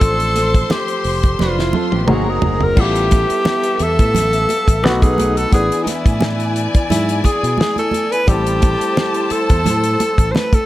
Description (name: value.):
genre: lush 1970s-style soul.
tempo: 87 BPM.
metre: 4/4.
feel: swing 54% on 16ths.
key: unclear.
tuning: A4 = 440 Hz.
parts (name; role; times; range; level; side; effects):
warm tenor saxophone; melody; 0.0-10.7 s; D#4 to C5; -18 LUFS; equal; slapback echo.
warm studio string section; second line; 0.0-10.6 s; B3 to C6; -24 LUFS; left 2 dB; none.
clear grand piano; accompaniment; 0.0-10.7 s; E3 to B4; -24 LUFS; left 3 dB; none.
fingered electric bass; bass; 0.0-10.3 s; F1 to B2; -20 LUFS; equal; none.
damped 70s drum kit; drums; 0.0-10.7 s; crash cymbal, hi-hat, kick drum, snare drum, toms; -16 LUFS; equal; none.
congas; percussion; 0.0-10.7 s; none; -24 LUFS; right 4 dB; none.
electric guitar through a small old amp; riff; 1.4-2.8 s; A#3 to C5; -25 LUFS; right 6 dB; none.
room: small room ambience.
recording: none.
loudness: -13 LUFS.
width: side -15 dB against mid.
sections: 0.0-2.8 A section; 2.8-10.7 B section.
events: drum fill 1.4-2.8.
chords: 0.0 Dm7/A; 2.1 G#9; 2.8 G13/A; 4.8 B7; 5.5 E7/A; 8.3 Am7.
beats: | 0.02 0.71 1.40 2.08 | 2.77 3.46 4.15 4.84 | 5.53 6.21 6.90 7.59 | 8.28 8.97 9.65 10.34.